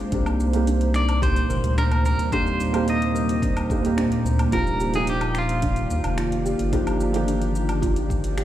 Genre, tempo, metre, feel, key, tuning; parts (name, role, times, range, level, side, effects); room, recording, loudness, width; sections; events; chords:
sunset chillout; 109 BPM; 4/4; straight; A4 = 438 Hz
dark baby grand piano; accompaniment; 0.0-8.4 s; F3 to G4; -26 LUFS; moving between left 2 dB and right 4 dB; auto-pan, tape echo
ethereal airy pad; sustained chords; 0.0-8.4 s; Bb2 to D5; -28 LUFS; right 1 dB; ensemble chorus, built-in reverb
soft round pluck; arpeggios; 0.1-8.4 s; D4 to Bb4; -32 LUFS; right 2 dB; chorus, cassette tape, tape echo
round analog bass; bass; 0.1-8.4 s; Eb1 to Eb2; -24 LUFS; equal
deep house drum kit; drums; 0.1-8.4 s; finger snaps, hi-hat, shaker, woodblock; -36 LUFS; equal; small room ambience
electronic kick drum; drums; 0.1-8.2 s; -26 LUFS; equal; small room ambience
clean electric guitar; melody; 1.0-8.4 s; F4 to Eb5; -28 LUFS; equal; tremolo, tape echo
light reverb; played on a big sound system in a bare room, large studio reverb; -20 LUFS; side -12 dB against mid
0.0-8.4 A section
0.1 Cm9; 4.5 Ebmaj9